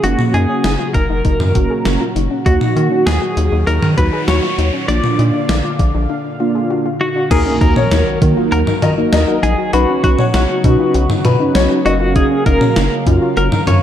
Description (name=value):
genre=synth-pop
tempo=99 BPM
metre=4/4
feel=straight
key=Eb minor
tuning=A4 = 440 Hz
part: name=twelve-string electric guitar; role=melody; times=0.0-13.8 s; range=Gb4 to D5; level=-20 LUFS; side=equal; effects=tremolo, analog delay
part: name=mellow synth brass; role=accompaniment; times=0.0-13.5 s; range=Gb3 to F5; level=-19 LUFS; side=right 2 dB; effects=chorus
part: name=chorused pulse-width pad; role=sustained chords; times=0.0-13.8 s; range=Bb2 to F5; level=-23 LUFS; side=left 1 dB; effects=none
part: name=soft round pluck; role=arpeggios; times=0.0-13.8 s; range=Db4 to Ab4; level=-24 LUFS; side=left 7 dB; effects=chorus, analog delay
part: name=rubbery square bass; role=bass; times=0.0-13.8 s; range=Gb1 to Eb3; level=-16 LUFS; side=equal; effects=none
part: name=gated 80s digital drum machine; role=drums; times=0.0-13.8 s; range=crash cymbal, hi-hat, kick drum, snare drum, toms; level=-18 LUFS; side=equal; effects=gated reverb, gated reverb snare
part: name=noise sweep and impact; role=sound effects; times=3.5-9.7 s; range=none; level=-28 LUFS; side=equal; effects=none
part: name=warm grand piano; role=second line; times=7.3-11.9 s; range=Bb4 to Eb5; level=-20 LUFS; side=left 5 dB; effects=analog delay
room=light reverb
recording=dark, warm production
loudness=-12 LUFS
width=side -10 dB against mid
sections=0.0-7.3 A section; 7.3-13.8 B section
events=noise sweep 3.5-7.3; break 6.1-7.3; impact 7.3-9.7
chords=0.0 Gb; 2.5 Ebm; 4.9 Bb; 7.3 Ebm; 9.7 Badd9; 11.9 Gbmaj7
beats=| 0.04 0.64 1.25 1.85 | 2.46 3.07 3.67 4.28 | 4.89 5.49 6.10 6.70 | 7.31 7.92 8.52 9.13 | 9.73 10.34 10.95 11.55 | 12.16 12.76 13.37